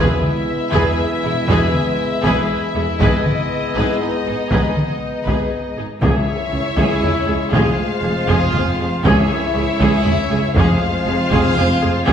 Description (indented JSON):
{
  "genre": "cinematic, epic orchestral film score",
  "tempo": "119 BPM",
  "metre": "3/4",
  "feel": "straight",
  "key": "unclear",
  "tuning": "A4 = 440 Hz",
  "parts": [
    { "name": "warm symphonic violin section", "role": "melody", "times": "0.0-12.1 s", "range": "D#5 to F5", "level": "-25 LUFS", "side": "left 6 dB", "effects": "none" },
    { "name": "warm symphonic violin section", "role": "second line", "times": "0.0-12.1 s", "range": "D#4 to C#5", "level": "-27 LUFS", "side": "left 2 dB", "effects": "none" },
    { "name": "warm symphonic viola section", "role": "accompaniment", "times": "0.0-12.1 s", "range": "G#4", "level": "-23 LUFS", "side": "right 1 dB", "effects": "none" },
    { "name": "mellow French horn section", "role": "sustained chords", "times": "0.0-12.1 s", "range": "G#3 to C#4", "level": "-25 LUFS", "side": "left 2 dB", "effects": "none" },
    { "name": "bright trumpet section", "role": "stabs", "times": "0.0-12.1 s", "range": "D#4 to F4", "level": "-25 LUFS", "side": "right 1 dB", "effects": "none" },
    { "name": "rich symphonic cello section", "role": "bass", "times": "0.0-12.1 s", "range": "C#2 to G#2", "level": "-23 LUFS", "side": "right 2 dB", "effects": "none" },
    { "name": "rich symphonic double bass section", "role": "bass", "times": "0.0-12.1 s", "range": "E1 to C#2", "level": "-23 LUFS", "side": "right 2 dB", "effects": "none" },
    { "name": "taiko ensemble", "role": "drums", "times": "0.2-12.1 s", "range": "none", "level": "-21 LUFS", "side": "equal", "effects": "none" },
    { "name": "timpani", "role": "percussion", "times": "6.0-6.7, 9.0-9.8 s", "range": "C#3", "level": "-26 LUFS", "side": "left 1 dB", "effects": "none" }
  ],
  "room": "wet recital hall reverb, RT60 1.4 s",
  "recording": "heard from further back in the room",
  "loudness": "-15 LUFS",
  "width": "side -8 dB against mid",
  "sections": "0.0-6.0 A section; 6.0-12.1 B section",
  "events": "none",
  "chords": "0.0 E; 3.0 G#m; 6.0 C#m; 7.5 Fm; 9.1 C#m; 10.6 Fm"
}